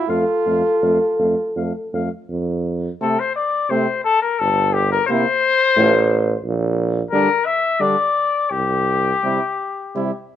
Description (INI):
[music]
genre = classical, brass quintet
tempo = 80-90 BPM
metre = 3/4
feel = rubato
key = F major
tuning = A4 = 441 Hz
[part]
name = mellow trumpet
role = second line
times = 0.0-10.1 s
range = C4 to F4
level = -27 LUFS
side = right 7 dB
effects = none
[part]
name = mellow French horn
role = accompaniment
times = 0.0-10.1 s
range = G3 to A4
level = -21 LUFS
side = left 1 dB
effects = none
[part]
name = warm cornet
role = melody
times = 0.1-10.3 s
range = G4 to F5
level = -18 LUFS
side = left 5 dB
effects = none
[part]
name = warm euphonium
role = accompaniment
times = 0.1-10.1 s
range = A2 to A3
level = -25 LUFS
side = right 2 dB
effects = none
[part]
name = warm tuba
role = bass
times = 0.1-9.1 s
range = G1 to F2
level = -20 LUFS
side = right 2 dB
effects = none
[sound]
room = moderate studio reverb, RT60 0.9 s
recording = worn, warbling old tape, cassette tape, warbly pitch drift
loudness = -16 LUFS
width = side -10 dB against mid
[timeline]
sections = 0.0-2.3 A section; 2.3-10.4 A section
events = none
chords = 0.1 F; 4.4 C5/G; 5.8 F/A; 6.5 Gm/Bb; 8.5 C5